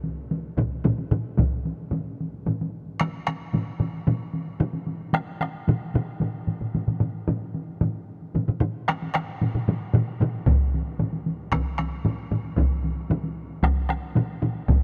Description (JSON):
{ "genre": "japanese traditional, taiko drum ensemble", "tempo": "113 BPM", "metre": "4/4", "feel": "straight", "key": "none", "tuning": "none", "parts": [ { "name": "solo taiko drums", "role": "percussion", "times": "0.0-14.8 s", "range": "none", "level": "-31 LUFS", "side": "equal", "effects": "none" }, { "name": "taiko ensemble", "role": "percussion", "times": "0.6-14.8 s", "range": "none", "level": "-30 LUFS", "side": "equal", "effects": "none" }, { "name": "taiko ensemble", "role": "percussion", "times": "0.6-14.5 s", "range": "none", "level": "-29 LUFS", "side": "equal", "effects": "none" }, { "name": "taiko ensemble", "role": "percussion", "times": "0.6-1.5, 10.5-14.8 s", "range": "none", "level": "-27 LUFS", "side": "equal", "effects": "none" } ], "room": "moderate huge ambient reverb, RT60 8.4 s", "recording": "none", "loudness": "-26 LUFS", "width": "mono", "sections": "0.0-1.9 A section; 1.9-14.8 B section", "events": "speeding up 0.0-14.8", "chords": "none" }